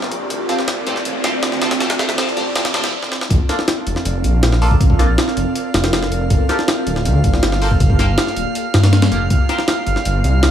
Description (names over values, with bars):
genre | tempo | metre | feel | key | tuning
drum and bass, jungle | 160 BPM | 4/4 | straight | unclear | A4 = 440 Hz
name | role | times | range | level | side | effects
detuned saw bass | bass | 0.0-10.5 s | D1 to G2 | -17 LUFS | equal | high-pass filter
jungle sampler-style drum kit | drums | 0.0-10.5 s | hi-hat, kick drum, snare drum | -18 LUFS | equal | high-pass filter on snare, high-pass filter on hats, high-pass filter on kick
riser | sound effects | 0.0-2.9 s | none | -26 LUFS | equal | none
drifting glass-harmonics texture | texture | 0.0-10.5 s | D5 to F6 | -28 LUFS | right 6 dB | chorus, built-in reverb
band-passed chord stab | stabs | 0.5-9.5 s | Bb3 to Bb4 | -24 LUFS | equal | phaser, lush chorus, dub echo
room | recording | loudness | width
digital ambience | studio ambience | -14 LUFS | side -10 dB against mid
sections
0.0-3.3 A section; 3.3-10.5 B section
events
build-up 0.0-3.3; riser 0.0-2.9; stop 2.9-3.3; drum fill 3.0; drop 3.3-10.5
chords
0.3 Dm7; 3.3 Bbmaj7; 6.3 Gm9; 9.3 C7sus4